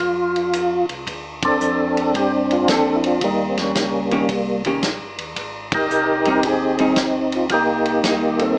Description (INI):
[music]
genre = soul jazz organ trio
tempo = 112 BPM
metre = 4/4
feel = swing 67% on 8ths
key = unclear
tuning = A4 = 445 Hz
[part]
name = percussive tonewheel organ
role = melody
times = 0.0-8.6 s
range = G3 to Bb4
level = -20 LUFS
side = equal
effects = slow rotary speaker, overdrive, chorus vibrato
[part]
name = mellow tonewheel organ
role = bass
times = 0.0-8.6 s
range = G1 to G2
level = -38 LUFS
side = equal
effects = slow rotary speaker
[part]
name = vintage drum kit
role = drums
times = 0.0-8.5 s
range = hi-hat, kick drum, ride cymbal, snare drum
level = -28 LUFS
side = equal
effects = none
[part]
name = vintage hollow-body jazz guitar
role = accompaniment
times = 2.7-8.6 s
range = Eb3 to C5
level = -25 LUFS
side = equal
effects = none
[sound]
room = moderate club reverb, RT60 0.6 s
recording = small speaker sound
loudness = -20 LUFS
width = mono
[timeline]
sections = 0.0-1.1 A section; 1.1-8.6 B section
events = band accent 1.3, 5.6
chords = 0.0 F5; 1.1 Bbmaj9; 3.2 Eb7; 5.4 Abmaj7; 7.5 Cm7